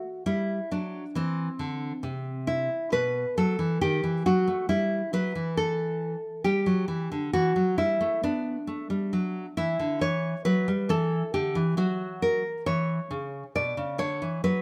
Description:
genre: classical, baroque-style dance for nylon-string guitar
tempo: 68 BPM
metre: 4/4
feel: rubato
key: E minor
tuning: A4 = 441 Hz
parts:
  - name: nylon-string guitar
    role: solo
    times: 0.0-14.6 s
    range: B2 to D5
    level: -28 LUFS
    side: equal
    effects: none
room: moderate stone room reverb, RT60 1.1 s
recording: band playing live in one room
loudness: -28 LUFS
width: mono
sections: 0.0-14.6 A section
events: none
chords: 0.0 Am (rootless); 2.9 B7; 4.7 Em; 10.0 Dmaj7sus2; 11.8 F#5; 13.6 Bm

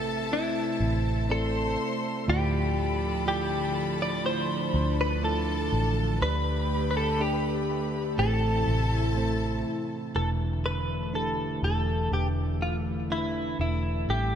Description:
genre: pop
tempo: 61 BPM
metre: 4/4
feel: straight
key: unclear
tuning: A4 = 442 Hz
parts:
  - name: direct-recorded clean electric guitar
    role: melody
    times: 0.0-14.4 s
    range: E4 to D5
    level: -30 LUFS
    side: left 1 dB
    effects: analog chorus
  - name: rich chamber violin section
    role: second line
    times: 0.0-10.1 s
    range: A4 to C6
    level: -36 LUFS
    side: left 3 dB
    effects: none
  - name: bell-like tine electric piano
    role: accompaniment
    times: 0.0-14.4 s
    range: A2 to D5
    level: -33 LUFS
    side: right 5 dB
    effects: none
  - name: airy breathy pad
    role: sustained chords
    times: 0.0-14.4 s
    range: C3 to E5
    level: -34 LUFS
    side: left 1 dB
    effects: chorus
  - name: vintage muted fingered electric bass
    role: bass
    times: 0.0-14.4 s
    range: E1 to D2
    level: -29 LUFS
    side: equal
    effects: none
room: moderate plate reverb, RT60 3.0 s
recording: dreamy mix soaked in reverb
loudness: -25 LUFS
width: side -8 dB against mid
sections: 0.0-10.2 A section; 10.2-14.4 B section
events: none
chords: 0.0 Am; 2.3 Dmadd9; 6.2 Gsus2/D; 8.2 Am; 10.2 E7sus4

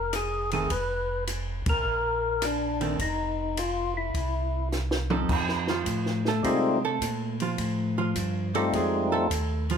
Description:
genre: soul jazz organ trio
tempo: 105 BPM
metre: 4/4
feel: swing 68% on 8ths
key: F mixolydian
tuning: A4 = 439 Hz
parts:
  - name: percussive tonewheel organ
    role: melody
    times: 0.0-9.3 s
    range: G3 to B4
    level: -27 LUFS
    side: left 3 dB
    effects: slow rotary speaker, overdrive
  - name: mellow tonewheel organ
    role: bass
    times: 0.0-9.8 s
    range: F1 to C3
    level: -31 LUFS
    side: equal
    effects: slow rotary speaker
  - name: compact cocktail drum kit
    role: drums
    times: 0.1-9.8 s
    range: crash cymbal, hi-hat, kick drum, ride cymbal, rim click, snare drum, toms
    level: -32 LUFS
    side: equal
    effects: none
  - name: archtop guitar, miked and amplified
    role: accompaniment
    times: 0.5-9.8 s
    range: Eb3 to A4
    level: -29 LUFS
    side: right 5 dB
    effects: none
room: moderate large studio reverb, RT60 0.9 s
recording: band playing live in one room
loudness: -25 LUFS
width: side -7 dB against mid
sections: 0.0-5.3 A section; 5.3-9.8 B section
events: band accent 1.6; drum fill 4.7-5.3; hollow-body jazz guitar solo 5.3-9.8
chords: 0.0 Bb5; 0.7 Fsus4; 1.9 Bb; 3.0 Ebsus2/F; 4.1 C; 5.3 F7

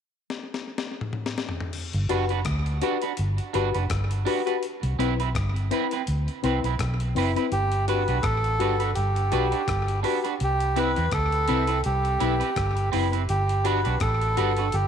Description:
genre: roots reggae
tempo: 83 BPM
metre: 4/4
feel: swing 56% on 16ths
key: G major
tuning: A4 = 438 Hz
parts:
  - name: breakbeat sampler-style drum kit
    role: drums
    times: 0.3-14.9 s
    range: crash cymbal, hi-hat, kick drum, rim click, snare drum, toms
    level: -33 LUFS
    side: left 3 dB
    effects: slapback echo
  - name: vintage muted fingered electric bass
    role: bass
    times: 1.9-14.9 s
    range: F#1 to E2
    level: -26 LUFS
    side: equal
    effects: none
  - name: electric guitar at the edge of break-up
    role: accompaniment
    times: 2.1-14.7 s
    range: C4 to B4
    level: -29 LUFS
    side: right 11 dB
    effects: analog chorus, tape echo
  - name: reed electric piano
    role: stabs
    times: 2.1-14.6 s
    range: C4 to B4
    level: -30 LUFS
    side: left 11 dB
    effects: fast tremolo
  - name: melodica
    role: melody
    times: 7.5-14.9 s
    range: G4 to B4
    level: -26 LUFS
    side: right 1 dB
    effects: tape echo
room: light reverb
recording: 1960s-style stereo with parts hard left and right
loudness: -22 LUFS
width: side -8 dB against mid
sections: 0.0-1.7 A section; 1.7-7.5 B section; 7.5-14.9 C section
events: drum fill 0.3-1.7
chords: 0.0 N.C.; 1.7 Gmaj7; 4.6 Cmaj7; 7.5 Gmaj7; 10.4 Cmaj7; 13.3 Gmaj7

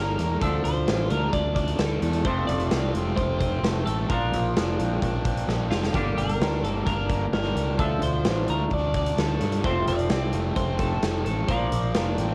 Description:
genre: indie rock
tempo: 130 BPM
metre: 4/4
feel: straight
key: unclear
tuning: A4 = 440 Hz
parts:
  - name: twelve-string electric guitar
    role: melody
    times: 0.0-11.9 s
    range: F4 to D5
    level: -33 LUFS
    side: equal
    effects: cassette tape
  - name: raw garage guitar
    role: riff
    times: 0.0-12.3 s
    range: F3 to G4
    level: -35 LUFS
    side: equal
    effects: overdrive, cassette tape
  - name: raw garage guitar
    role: riff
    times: 0.0-12.3 s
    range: F2 to D4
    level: -34 LUFS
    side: equal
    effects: overdrive, lush chorus, cassette tape, tape echo
  - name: fuzz fingered electric bass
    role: bass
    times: 0.0-12.3 s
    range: F1 to G2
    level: -29 LUFS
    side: equal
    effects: overdrive
  - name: big rock drum kit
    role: drums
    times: 0.2-12.3 s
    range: hi-hat, kick drum, snare drum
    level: -30 LUFS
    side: equal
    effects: cassette tape
room: light reverb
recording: home recording on cassette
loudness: -25 LUFS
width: mono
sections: 0.0-12.3 A section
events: drum fill 5.5-5.9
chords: 0.4 Dm; 2.2 F; 4.1 Bbadd9; 5.9 Gm; 7.8 Dm; 9.6 F; 11.5 Bbadd9

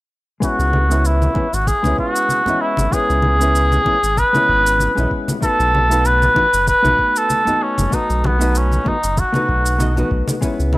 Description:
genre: sunset chillout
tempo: 96 BPM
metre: 4/4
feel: swing 55% on 16ths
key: C# minor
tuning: A4 = 439 Hz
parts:
  - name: trumpet with cup mute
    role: melody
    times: 0.4-10.8 s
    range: B3 to B4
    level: -16 LUFS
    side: equal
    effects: analog delay
  - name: hollow-body jazz guitar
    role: accompaniment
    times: 0.4-10.8 s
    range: G#3 to D#5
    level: -23 LUFS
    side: equal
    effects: auto-pan, low-pass filter
  - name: electronic kick drum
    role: drums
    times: 0.4-10.6 s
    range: none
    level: -22 LUFS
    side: equal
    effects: none
  - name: shaker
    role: drums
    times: 0.4-10.7 s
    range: none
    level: -30 LUFS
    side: equal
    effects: overdrive
  - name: round analog bass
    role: bass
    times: 0.6-10.8 s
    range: F#1 to C#2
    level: -18 LUFS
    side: equal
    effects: none
  - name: congas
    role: percussion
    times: 0.7-10.8 s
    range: none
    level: -24 LUFS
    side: left 1 dB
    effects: none
room: small room ambience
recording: dry, gritty hardware recording, transformer saturation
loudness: -14 LUFS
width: side -19 dB against mid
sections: 0.4-10.8 A section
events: filter sweep on hollow-body jazz guitar 0.4-10.8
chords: 0.4 C#m7; 5.4 B7

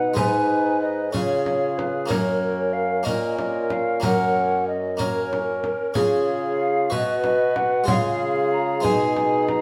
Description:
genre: classical, renaissance-style consort dance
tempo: 62 BPM (dotted quarters)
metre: 6/8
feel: straight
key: Db mixolydian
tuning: A4 = 440 Hz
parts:
  - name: mellow hollow tenor recorder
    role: melody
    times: 0.0-9.6 s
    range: Bb4 to Bb5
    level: -27 LUFS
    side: equal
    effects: none
  - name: mellow tenor recorder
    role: second line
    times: 0.0-9.6 s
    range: Ab4 to Cb5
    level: -31 LUFS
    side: equal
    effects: none
  - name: clear trombone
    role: accompaniment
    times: 0.0-9.6 s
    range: Db4 to Gb4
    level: -31 LUFS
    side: equal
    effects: none
  - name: harpsichord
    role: accompaniment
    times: 0.0-9.6 s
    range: Gb2 to Cb5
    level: -31 LUFS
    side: equal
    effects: none
  - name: mellow bassoon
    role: bass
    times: 0.0-9.6 s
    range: Gb2 to Db3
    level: -28 LUFS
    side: equal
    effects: none
  - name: frame drum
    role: percussion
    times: 0.2-9.6 s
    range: none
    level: -31 LUFS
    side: equal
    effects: none
room: moderate stone room reverb, RT60 1.2 s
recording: none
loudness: -22 LUFS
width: mono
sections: 0.0-9.6 A section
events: none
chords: 0.2 Abm; 1.1 Db; 2.1 Gb; 3.1 Bbm; 4.0 Gb; 6.0 Db; 6.9 Cb5; 7.9 Db; 8.8 Abm/Cb

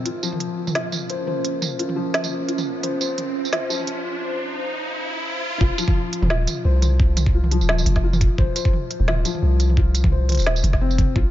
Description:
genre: half-time drum and bass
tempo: 173 BPM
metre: 4/4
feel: swing 55% on 16ths, half-time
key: unclear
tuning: A4 = 439 Hz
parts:
  - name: dark analog pad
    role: sustained chords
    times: 0.0-5.6 s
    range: Db4 to F5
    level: -30 LUFS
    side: right 4 dB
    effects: chorus, sidechain pumping
  - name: felt-muted upright piano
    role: arpeggios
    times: 0.0-11.3 s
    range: F3 to C5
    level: -27 LUFS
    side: left 5 dB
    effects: digital delay
  - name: organic electronic drum kit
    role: drums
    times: 0.1-11.1 s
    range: hi-hat, snare drum, tambourine, toms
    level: -26 LUFS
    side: right 2 dB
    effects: none
  - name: riser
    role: sound effects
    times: 2.3-5.6 s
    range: none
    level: -31 LUFS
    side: equal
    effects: none
  - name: long sustained 808-style bass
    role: bass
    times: 5.6-11.2 s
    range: Eb1 to C2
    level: -19 LUFS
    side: equal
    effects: none
  - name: electronic kick drum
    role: drums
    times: 5.6-11.2 s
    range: none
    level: -19 LUFS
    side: equal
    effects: overdrive
room: light reverb, digital ambience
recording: high-pass filter, nothing above 7.5 kHz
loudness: -19 LUFS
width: side -13 dB against mid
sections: 0.0-5.6 A section; 5.6-11.3 B section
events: build-up 0.0-5.6; filter sweep on analog synth pad 0.0-5.6; riser 2.3-5.6; break 4.2-5.6; drop 5.6-11.3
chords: 0.1 Bbm; 5.6 F5

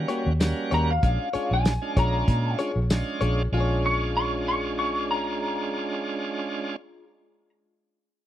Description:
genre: straight-eighth soul blues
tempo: 96 BPM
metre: 4/4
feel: swing 53% on 16ths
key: unclear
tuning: A4 = 445 Hz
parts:
  - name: electric guitar through a small old amp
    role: melody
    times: 0.0-7.5 s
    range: F5 to C#6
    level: -28 LUFS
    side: left 1 dB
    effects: ensemble chorus
  - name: bright tonewheel organ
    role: accompaniment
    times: 0.0-6.8 s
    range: G3 to F#4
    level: -30 LUFS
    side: right 4 dB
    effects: slow rotary speaker, overdrive
  - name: vintage muted fingered electric bass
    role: bass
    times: 0.0-6.8 s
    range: Bb1 to Bb2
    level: -25 LUFS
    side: equal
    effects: none
  - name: direct-recorded clean electric guitar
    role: stabs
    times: 0.1-7.1 s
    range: Bb3 to Db5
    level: -32 LUFS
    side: left 4 dB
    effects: spring reverb, tape echo
  - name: warm soul drum kit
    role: drums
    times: 0.1-3.4 s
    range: hi-hat, kick drum, snare drum, tambourine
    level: -23 LUFS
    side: equal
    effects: none
room: small room ambience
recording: dry, close 1970s-style studio recording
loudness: -23 LUFS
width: side -12 dB against mid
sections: 0.0-3.5 A section; 3.5-6.0 B section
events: none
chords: 0.0 Eb7#9; 1.0 Bb7#9

